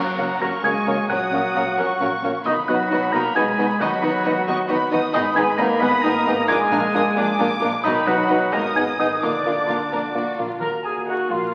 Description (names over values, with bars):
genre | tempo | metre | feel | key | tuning
cinematic | 89 BPM (dotted quarters) | 6/8 | straight | Eb minor from 5.1 s | A4 = 440 Hz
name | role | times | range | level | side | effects
music box | melody | 0.0-10.3 s | D6 to Cb7 | -29 LUFS | equal | none
rich chamber violin section | melody | 0.0-11.2 s | Gb5 to F6 | -30 LUFS | equal | none
bright flute section | second line | 0.0-11.5 s | D5 to Cb6 | -29 LUFS | equal | none
mellow cor anglais | second line | 0.0-11.5 s | D4 to Cb5 | -30 LUFS | equal | none
rich chamber violin section | second line | 0.0-11.2 s | D#4 to D#5 | -30 LUFS | equal | none
warm clarinet | second line | 0.0-10.5 s | C#4 to F4 | -32 LUFS | equal | none
dark bassoon | accompaniment | 0.0-11.5 s | Bb3 to Cb4 | -30 LUFS | equal | none
rich chamber viola section | accompaniment | 0.0-11.5 s | F#3 to Bb4 | -31 LUFS | equal | none
mellow French horn section | sustained chords | 0.0-11.5 s | D3 to Gb4 | -29 LUFS | equal | none
clear studio cello section | bass | 0.0-11.5 s | Eb2 to D#3 | -38 LUFS | equal | none
rich chamber double bass section | bass | 0.0-11.5 s | F#1 to D#2 | -40 LUFS | equal | none
room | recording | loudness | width
wet concert hall reverb, RT60 2.0 s | very old 78 rpm record, vinyl crackle | -20 LUFS | mono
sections
0.0-10.6 A section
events
none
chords
0.0 F#; 1.1 F#/A#; 2.5 B; 3.8 B/D#; 5.1 Abm; 6.5 Bb7; 7.8 B; 8.5 Abm; 9.2 Bb; 10.6 Ebm